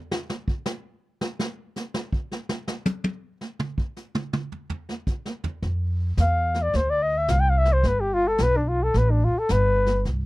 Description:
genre	jazz, small-group swing and bop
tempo	109 BPM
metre	4/4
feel	swing 66% on 8ths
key	unclear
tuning	A4 = 443 Hz
part	vintage brush drum kit	drums	0.1-10.3 s	brushed snare drum, hi-hat, kick drum, snare drum, toms	-28 LUFS	right 1 dB	none
part	upright bass	bass	5.6-10.3 s	G1 to F2	-22 LUFS	equal	none
part	mellow flugelhorn	melody	6.2-10.1 s	D4 to G5	-22 LUFS	left 2 dB	none
room	little or no reverb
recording	dry, close 1970s-style studio recording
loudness	-22 LUFS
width	side -20 dB against mid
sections	0.0-10.3 A section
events	flugelhorn solo 0.0-10.3; drum solo 0.0-5.6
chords	0.0 N.C.; 5.6 Dm7; 7.8 Gadd9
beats	0.12 0.67 | 1.22 1.76 2.31 2.87 | 3.42 3.97 4.52 5.07 | 5.62 6.17 6.73 7.28 | 7.83 8.39 8.94 9.50 | 10.05

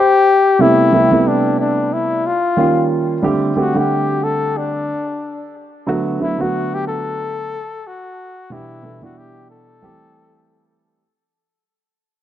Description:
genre	hip hop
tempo	91 BPM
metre	4/4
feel	swing 57% on 16ths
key	A dorian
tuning	A4 = 440 Hz
part	breathy flugelhorn	melody	0.0-10.8 s	D4 to A4	-17 LUFS	left 3 dB	tape echo
part	dark concert grand piano	accompaniment	0.0-11.0 s	B2 to F#5	-17 LUFS	right 2 dB	none
room	moderate echo chamber reverb, RT60 1.8 s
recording	dark, warm production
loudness	-14 LUFS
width	side -11 dB against mid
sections	0.6-11.1 A section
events	fade-out 0.6-11.1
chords	0.0 Am7 (rootless); 0.6 Am9; 2.6 D#9; 3.2 D7sus4; 5.9 Bm7; 8.5 Em7/B; 9.8 Am7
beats	| 0.60 1.26 1.92 2.58 | 3.23 3.89 4.55 5.21 | 5.87 6.53 7.19 7.85 | 8.51 9.17 9.83 10.49

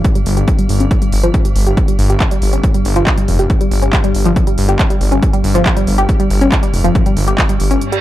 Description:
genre	driving peak-time techno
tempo	139 BPM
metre	4/4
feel	straight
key	unclear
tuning	A4 = 440 Hz
part	metallic inharmonic drone	drone	0.0-8.0 s	G2 to G3	-22 LUFS	left 2 dB	chorus, built-in reverb, sidechain pumping
part	electronic kick drum	drums	0.0-7.5 s	none	-14 LUFS	equal	none
part	techno drum kit	drums	0.0-8.0 s	handclaps, hi-hat	-22 LUFS	right 1 dB	sidechain pumping on hats, sidechain pumping on cymbals
part	analog pluck	riff	0.2-8.0 s	F3 to G4	-18 LUFS	left 1 dB	chorus, phaser, tube saturation, sidechain pumping, analog delay
part	detuned saw bass	bass	0.3-7.8 s	F1 to G1	-15 LUFS	equal	sidechain pumping
part	reverse cymbal	sound effects	7.9-8.0 s	none	-20 LUFS	right 7 dB	none
room	digital ambience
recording	dry, gritty hardware recording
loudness	-11 LUFS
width	side -14 dB against mid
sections	0.0-8.0 A section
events	filter sweep on synth arpeggio sound 0.0-8.0; break 7.8; reverse cymbal 7.9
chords	none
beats	| 0.04 0.48 0.91 1.34 | 1.77 2.20 2.63 3.07 | 3.50 3.93 4.36 4.79 | 5.22 5.66 6.09 6.52 | 6.95 7.38 7.82

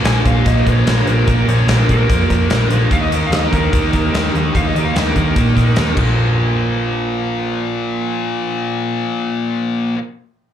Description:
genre	hard rock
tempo	147 BPM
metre	4/4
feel	straight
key	unclear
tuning	A4 = 442 Hz
part	heavy high-gain guitar	riff	0.0-10.0 s	Bb2 to Eb4	-22 LUFS	left 8 dB	distortion
part	overdriven semi-hollow guitar	riff	0.0-10.0 s	Bb2 to Eb4	-21 LUFS	right 8 dB	slapback echo
part	hollow-body short-scale picked electric bass	bass	0.0-9.9 s	Bb1 to Bb2	-17 LUFS	equal	none
part	huge arena drum kit	drums	0.0-6.1 s	crash cymbal, hi-hat, kick drum, snare drum	-18 LUFS	left 1 dB	none
part	lead guitar through a small cranked amp	melody	0.1-6.0 s	Bb4 to Ab5	-22 LUFS	left 1 dB	overdrive, slapback echo, plate reverb
room	light reverb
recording	live gig heard through the venue's PA, club ambience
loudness	-14 LUFS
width	side -10 dB against mid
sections	0.0-6.2 A section; 6.2-9.4 B section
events	lead electric guitar solo 0.0-6.2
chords	0.0 Bbm; 2.9 Eb5; 6.0 Bb5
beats	0.05 0.45 0.86 | 1.27 1.68 2.08 2.49 | 2.90 3.31 3.72 4.13 | 4.54 4.94 5.35 5.76 | 6.17 6.58 6.99 7.40 | 7.81 8.22 8.63 9.04

